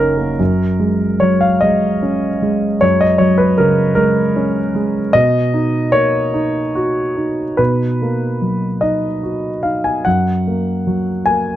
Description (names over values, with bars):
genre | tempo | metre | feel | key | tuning
neoclassical minimalist piano | 49 BPM (dotted quarters) | 6/8 | rubato | F# major | A4 = 440 Hz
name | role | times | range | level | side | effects
dark concert grand piano | solo | 0.0-11.6 s | F#1 to G#5 | -13 LUFS | equal | none
room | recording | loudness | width
light reverb | dry, close 1970s-style studio recording | -13 LUFS | side -12 dB against mid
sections
0.4-11.6 A section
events
none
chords
0.4 F#add9; 5.2 Bmaj7; 10.1 F#add9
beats
| 0.40 1.63 | 2.83 3.98 | 5.15 6.35 | 7.59 8.81 | 10.05 11.26